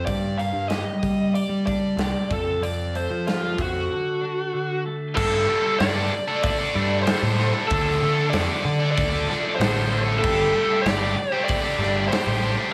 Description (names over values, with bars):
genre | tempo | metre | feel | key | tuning
quiet-loud alternative rock | 95 BPM | 4/4 | straight | G minor | A4 = 440 Hz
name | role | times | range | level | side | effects
bluesy overdriven lead guitar | melody | 0.0-12.5 s | F4 to F5 | -28 LUFS | equal | distortion, slapback echo
twelve-string electric guitar | arpeggios | 0.0-5.2 s | F2 to G4 | -33 LUFS | equal | lush chorus
fuzz picked electric bass | bass | 0.0-12.6 s | G1 to G3 | -28 LUFS | equal | overdrive
big rock drum kit | drums | 0.1-12.3 s | crash cymbal, hi-hat, kick drum, snare drum | -30 LUFS | equal | none
high-gain distorted guitar | riff | 5.1-12.7 s | D3 to A4 | -27 LUFS | equal | distortion
room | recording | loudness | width
moderate large studio reverb, RT60 1.1 s | small room ambience | -23 LUFS | mono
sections
0.0-5.2 A section; 5.2-12.7 B section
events
none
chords
0.1 Gm; 2.3 F; 3.9 D; 5.2 Gsus2; 7.7 Dm; 10.2 Gsus2